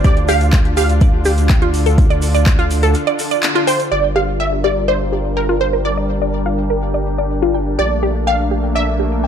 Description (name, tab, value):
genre	progressive house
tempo	124 BPM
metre	4/4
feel	straight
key	G dorian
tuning	A4 = 440 Hz
part	wide unison pluck	melody	0.0-9.3 s	Bb4 to F5	-20 LUFS	right 1 dB	phaser, cassette tape, ping-pong delay
part	supersaw pad	sustained chords	0.0-9.3 s	D3 to Bb4	-22 LUFS	equal	sidechain pumping, low-pass filter
part	glassy wavetable pluck	arpeggios	0.0-9.3 s	F4 to G5	-20 LUFS	equal	chorus, vintage 12-bit sampler grit, sidechain pumping, ping-pong delay
part	saturated sub bass	bass	0.0-9.3 s	G1 to D2	-18 LUFS	equal	sidechain pumping
part	deep house drum kit	drums	0.0-3.9 s	handclaps, hi-hat	-23 LUFS	equal	overdrive, sidechain pumping on hats
part	electronic kick drum	drums	0.0-2.6 s	none	-13 LUFS	equal	none
part	egg shaker	percussion	0.0-3.9 s	none	-32 LUFS	right 3 dB	none
room	light reverb, digital ambience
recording	none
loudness	-13 LUFS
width	side -8 dB against mid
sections	0.0-3.9 A section; 3.9-9.3 B section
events	break 2.9-3.9; band accent 3.4; filter sweep on synth arpeggio sound 3.9-9.3; filter sweep on supersaw synth 3.9-9.3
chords	0.0 Dm; 3.9 Gm7; 7.8 Bbmaj7